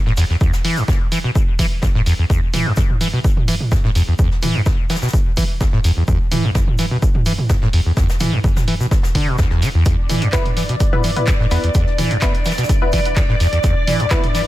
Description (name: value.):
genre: acid house.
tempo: 127 BPM.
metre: 4/4.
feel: straight.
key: E minor.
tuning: A4 = 441 Hz.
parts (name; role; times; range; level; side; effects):
acid bass, saw; riff; 0.1-14.4 s; E2 to E3; -18 LUFS; equal; overdrive, wide subtle chorus, cassette tape, ping-pong delay.
snare drum and shaker; drums; 0.1-14.5 s; none; -33 LUFS; left 1 dB; high-pass filter on snare, sidechain pumping on perc, high-pass filter on perc, high-pass filter on room.
punchy analog drum machine; drums; 0.2-14.4 s; handclaps, hi-hat, toms; -23 LUFS; right 1 dB; none.
electronic kick drum; drums; 0.4-14.2 s; none; -17 LUFS; equal; none.
string machine, full ensemble; sustained chords; 9.9-14.5 s; D5; -23 LUFS; equal; ensemble chorus, sidechain pumping.
filtered dub chord stab; stabs; 10.3-14.2 s; B3 to B4; -24 LUFS; left 3 dB; chorus, ping-pong delay.
room: little or no reverb.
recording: none.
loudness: -14 LUFS.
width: side -16 dB against mid.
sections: 0.0-14.5 A section.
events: none.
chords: 0.0 E5.